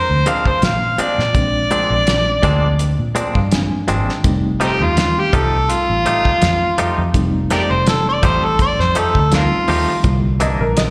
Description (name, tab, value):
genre	straight-eighth soul blues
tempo	83 BPM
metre	4/4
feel	swing 54% on 16ths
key	F mixolydian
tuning	A4 = 439 Hz
part	overdriven harmonica	melody	0.0-10.0 s	Bb3 to F5	-20 LUFS	equal	slapback echo, tape echo
part	mellow reed electric piano	accompaniment	0.0-10.9 s	D3 to Ab5	-27 LUFS	equal	fast tremolo, slapback echo
part	vintage muted fingered electric bass	bass	0.1-10.9 s	F1 to Bb2	-22 LUFS	equal	none
part	direct-recorded clean electric guitar	stabs	0.3-10.6 s	Bb2 to G4	-25 LUFS	equal	slapback echo
part	cloth-damped thuddy drum kit	drums	0.3-10.9 s	hi-hat, kick drum, snare drum	-22 LUFS	equal	none
part	clear upright piano	second line	10.4-10.9 s	Bb4 to Eb5	-22 LUFS	equal	slapback echo
room	light reverb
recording	live gig heard through the venue's PA, recital hall reverb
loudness	-16 LUFS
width	mono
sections	0.0-10.9 A section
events	reed electric piano fill 2.8-4.2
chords	0.0 Bb9; 4.2 F9; 10.0 C9